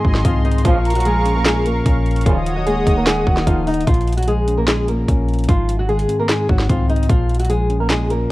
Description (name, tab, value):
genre	hip hop, trap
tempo	149 BPM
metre	4/4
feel	half-time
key	Bb minor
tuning	A4 = 440 Hz
part	fingerpicked old ladder-braced acoustic guitar	melody	0.0-8.3 s	F3 to Eb5	-21 LUFS	equal	low-pass filter
part	breathy mellow concert flute	second line	0.0-3.8 s	Gb5 to C6	-26 LUFS	right 3 dB	tape echo
part	mellow tine electric piano	accompaniment	0.0-8.3 s	Ab2 to Eb4	-22 LUFS	left 1 dB	auto-pan, low-pass filter
part	warm analog pad	sustained chords	0.0-3.9 s	Ab4 to Eb6	-27 LUFS	equal	chorus, tremolo
part	clean 808-style bass	bass	0.0-8.3 s	Eb1 to C2	-20 LUFS	equal	none
part	trap drum kit	drums	0.0-8.2 s	handclaps, hi-hat, kick drum, snare drum	-19 LUFS	equal	none
part	warm brass ensemble	stabs	0.7-2.4 s	Gb2 to F3	-24 LUFS	right 2 dB	none
room	small room ambience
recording	worn, warbling old tape, cassette tape, warbly pitch drift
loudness	-14 LUFS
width	side -18 dB against mid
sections	0.0-3.9 A section; 3.9-8.3 B section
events	none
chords	0.0 Ab; 0.7 Bbm; 2.3 Ebm7; 3.9 Bbm; 5.5 Ab; 7.1 Bbm